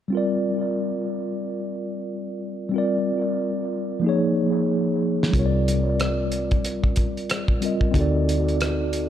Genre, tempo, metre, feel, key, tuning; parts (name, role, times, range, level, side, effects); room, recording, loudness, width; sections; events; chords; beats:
R&B, neo-soul; 92 BPM; 4/4; swing 61% on 16ths; A4 = 440 Hz
mellow tine electric piano; accompaniment; 0.1-9.1 s; E#3 to Eb5; -23 LUFS; equal; medium stereo tremolo, analog delay
cloth-damped thuddy drum kit; drums; 5.2-9.1 s; hi-hat, kick drum, rim click, snare drum; -24 LUFS; equal
vintage muted fingered electric bass; bass; 5.3-9.1 s; C2 to D2; -24 LUFS; equal
light reverb, small room reverb; echo-heavy mix; -21 LUFS; side -10 dB against mid
0.1-9.1 A section
drum fill 4.0-5.3
0.1 Bb69/G; 4.0 C#; 5.3 C7sus2; 7.9 D7b9
| 0.12 0.77 1.42 2.07 | 2.73 3.38 4.03 4.68 | 5.33 5.99 6.64 7.29 | 7.94 8.60